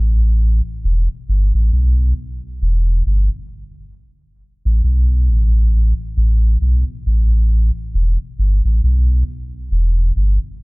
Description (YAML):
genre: reggae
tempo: 68 BPM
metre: 4/4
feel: swing 58% on 16ths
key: unclear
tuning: A4 = 441 Hz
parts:
  - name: warm sub bass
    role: solo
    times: 0.0-10.4 s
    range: E1 to B1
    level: -14 LUFS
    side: equal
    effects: none
room: light reverb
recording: dark, warm production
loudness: -14 LUFS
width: side -29 dB against mid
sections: 0.0-10.6 A section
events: none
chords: none